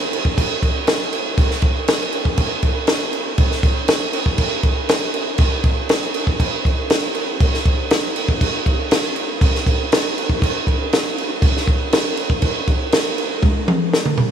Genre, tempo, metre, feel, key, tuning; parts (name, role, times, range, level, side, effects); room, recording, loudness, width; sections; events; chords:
rock; 119 BPM; 4/4; straight
compact cocktail drum kit; drums; 0.1-14.3 s; crash cymbal, kick drum, snare drum, toms; -16 LUFS; equal
wet huge ambient reverb, RT60 7.9 s; dreamy mix soaked in reverb, small room ambience; -16 LUFS; side -8 dB against mid
0.0-14.3 A section
drum fill 13.4-14.3